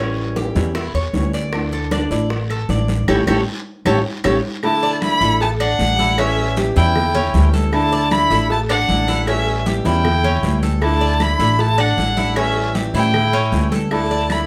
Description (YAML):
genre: latin, Cuban son and guajira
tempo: 155 BPM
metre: 4/4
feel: straight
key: D major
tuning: A4 = 441 Hz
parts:
  - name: flamenco guitar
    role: accompaniment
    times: 0.0-14.5 s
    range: D3 to E4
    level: -27 LUFS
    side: equal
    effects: none
  - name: Cuban tres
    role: arpeggios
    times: 0.0-14.5 s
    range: C#4 to D5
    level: -26 LUFS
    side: equal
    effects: none
  - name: upright bass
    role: bass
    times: 0.0-14.4 s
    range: A1 to A2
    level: -22 LUFS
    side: equal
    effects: none
  - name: bongos and cowbell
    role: percussion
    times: 0.2-14.5 s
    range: none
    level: -30 LUFS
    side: equal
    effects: none
  - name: congas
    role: percussion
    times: 0.2-14.5 s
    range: none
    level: -28 LUFS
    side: equal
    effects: none
  - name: guiro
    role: percussion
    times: 0.4-14.5 s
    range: none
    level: -38 LUFS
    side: equal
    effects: none
  - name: claves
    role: percussion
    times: 0.8-14.5 s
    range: none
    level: -33 LUFS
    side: equal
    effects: none
  - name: warm violin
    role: melody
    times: 4.6-14.5 s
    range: E5 to B5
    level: -22 LUFS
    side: equal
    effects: none
  - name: melodica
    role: second line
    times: 4.6-14.5 s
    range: C#4 to E4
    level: -27 LUFS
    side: equal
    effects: none
room: moderate studio reverb, RT60 0.5 s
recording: none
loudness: -18 LUFS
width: mono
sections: 0.0-4.6 A section; 4.6-14.5 B section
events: band accent 3.1-4.6; drum fill 3.9-4.6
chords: 0.0 A7; 1.5 Dsus2; 3.1 A7; 4.6 Dsus2; 6.2 A7; 7.7 Dsus2; 9.3 A7; 10.8 Dsus2; 12.4 A7; 13.9 Dsus2